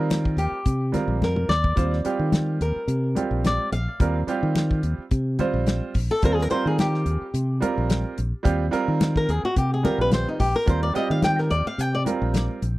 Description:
electric jazz fusion; 108 BPM; 4/4; swing 54% on 16ths; Eb major; A4 = 441 Hz
bright baby grand piano; accompaniment; 0.0-12.6 s; G3 to C5; -27 LUFS; right 5 dB
fingered electric bass; bass; 0.0-12.8 s; Bb1 to Eb3; -24 LUFS; equal
damped 70s drum kit; drums; 0.1-12.8 s; hi-hat, kick drum, snare drum, toms; -24 LUFS; equal
congas; percussion; 0.1-12.7 s; -30 LUFS; left 3 dB
flamenco guitar; melody; 0.4-12.0 s; Eb4 to G5; -26 LUFS; left 1 dB
light reverb; dry, close 1970s-style studio recording; -20 LUFS; side -18 dB against mid
0.0-12.8 A section
nylon-string guitar solo 0.0-12.8; drum fill 1.2-1.8
0.0 Ebadd9

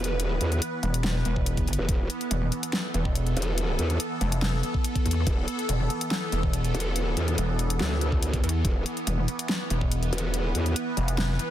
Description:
heavy wobble dubstep; 142 BPM; 4/4; half-time; A4 = 436 Hz
evolving wavetable pad; sustained chords; 0.0-11.5 s; E3 to B4; -31 LUFS; right 1 dB; phaser, built-in reverb, sidechain pumping
growl bass; bass; 0.0-10.7 s; E1 to E2; -26 LUFS; equal; chorus, overdrive
dubstep drum kit; drums; 0.0-11.5 s; hi-hat, snare drum; -31 LUFS; left 1 dB; overdrive
pulsing pluck wobble bass; bass; 0.8-11.4 s; E1 to E2; -26 LUFS; equal; chorus, overdrive
electronic kick drum; drums; 1.4-9.9 s; -27 LUFS; equal; overdrive
digital ambience; dense, heavily limited modern master; -24 LUFS; side -12 dB against mid
0.0-11.5 A section
0.0 E5

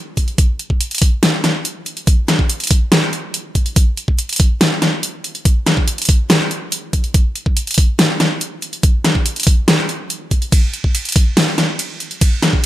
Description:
dubstep; 142 BPM; 4/4; half-time
dubstep drum kit; drums; 0.2-12.7 s; hi-hat, ride cymbal, snare drum; -16 LUFS; equal; overdrive
electronic kick drum; drums; 0.2-12.6 s; -13 LUFS; equal; overdrive
little or no reverb; -14 LUFS; side -14 dB against mid
0.0-12.7 A section

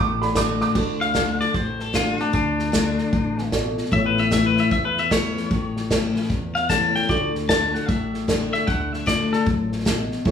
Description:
honky-tonk and classic country; 152 BPM; 4/4; swing 64% on 8ths; D major; A4 = 445 Hz
dark upright piano; second line; 0.0-0.8 s; B5 to D6; -24 LUFS; right 6 dB
dark grand piano; accompaniment; 0.0-10.3 s; E4 to D5; -33 LUFS; right 4 dB
picked steel-string acoustic guitar; accompaniment; 0.0-10.3 s; E2 to F#4; -25 LUFS; left 4 dB
upright bass; bass; 0.0-10.3 s; A1 to E2; -28 LUFS; equal
unplugged drum kit; drums; 0.2-10.3 s; crash cymbal, hi-hat, kick drum, snare drum; -25 LUFS; equal
twangy electric guitar; melody; 1.0-9.5 s; D4 to A5; -23 LUFS; left 3 dB
wet large studio reverb, RT60 0.9 s; band playing live in one room, small room ambience; -19 LUFS; side -8 dB against mid
0.8-10.3 A section
clean electric guitar solo 0.8-10.3
0.0 D; 3.9 A; 7.1 D

